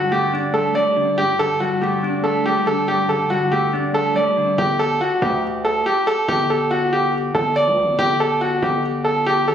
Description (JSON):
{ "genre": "hip hop, drill", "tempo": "141 BPM", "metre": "4/4", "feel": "half-time", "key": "unclear", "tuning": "A4 = 435 Hz", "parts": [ { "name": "clear grand piano", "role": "melody", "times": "0.0-9.5 s", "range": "F#4 to D5", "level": "-18 LUFS", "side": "equal", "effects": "digital delay" }, { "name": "mellow electric guitar", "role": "accompaniment", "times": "0.0-4.6 s", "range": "G2 to D4", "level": "-23 LUFS", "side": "left 1 dB", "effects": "phaser" }, { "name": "distorted 808-style bass", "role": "bass", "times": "4.6-9.5 s", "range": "G1 to D2", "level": "-24 LUFS", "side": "left 1 dB", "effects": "distortion" } ], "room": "light reverb, small room reverb", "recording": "recorded on a phone in the room, studio reverb, compression", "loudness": "-16 LUFS", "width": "side -9 dB against mid", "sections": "0.0-4.6 A section; 4.6-9.5 B section", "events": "none", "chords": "0.0 Gsus2; 4.6 G5; 8.0 Gsus2" }